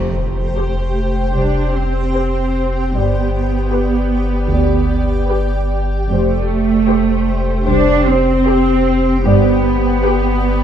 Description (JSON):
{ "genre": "cinematic, suspense film score", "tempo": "76 BPM", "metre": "4/4", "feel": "straight", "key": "unclear", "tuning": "A4 = 440 Hz", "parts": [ { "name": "clear French horn section", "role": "sustained chords", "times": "0.0-9.5 s", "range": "G4 to D5", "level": "-22 LUFS", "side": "left 5 dB", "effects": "none" }, { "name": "granular cloud pad", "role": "sustained chords", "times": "0.0-10.6 s", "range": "G4 to G5", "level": "-23 LUFS", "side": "left 1 dB", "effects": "built-in reverb" }, { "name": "muted symphonic cello section", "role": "bass", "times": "0.0-10.6 s", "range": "A3 to D4", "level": "-17 LUFS", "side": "right 3 dB", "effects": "none" }, { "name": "muted symphonic double bass section", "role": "bass", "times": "0.0-9.9 s", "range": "C2 to G2", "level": "-20 LUFS", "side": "right 4 dB", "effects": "none" }, { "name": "warm sub bass", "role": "drone", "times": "0.0-10.6 s", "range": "F1 to G1", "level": "-19 LUFS", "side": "left 1 dB", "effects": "none" }, { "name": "impact", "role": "sound effects", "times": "0.0-2.9 s", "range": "none", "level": "-31 LUFS", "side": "left 1 dB", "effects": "none" }, { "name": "muted symphonic violin section", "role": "melody", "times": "0.6-10.6 s", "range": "G5", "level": "-36 LUFS", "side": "left 7 dB", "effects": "none" }, { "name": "muted symphonic violin section", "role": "second line", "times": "0.6-10.6 s", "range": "B4 to C5", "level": "-27 LUFS", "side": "left 6 dB", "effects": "none" }, { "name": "muted symphonic viola section", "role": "accompaniment", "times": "0.6-10.6 s", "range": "G4", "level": "-25 LUFS", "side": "equal", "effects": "none" } ], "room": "light reverb", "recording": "dark, warm production, nothing above 10.3 kHz", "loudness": "-13 LUFS", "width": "side -9 dB against mid", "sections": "0.0-10.6 A section", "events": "band accent 0.0-0.6; impact 0.0-2.9", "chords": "0.0 Fadd9; 2.9 G; 6.1 Fadd9; 9.3 G", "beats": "0.57 1.36 2.15 | 2.94 3.73 4.52 5.31 | 6.10 6.89 7.68 8.47 | 9.26 10.05" }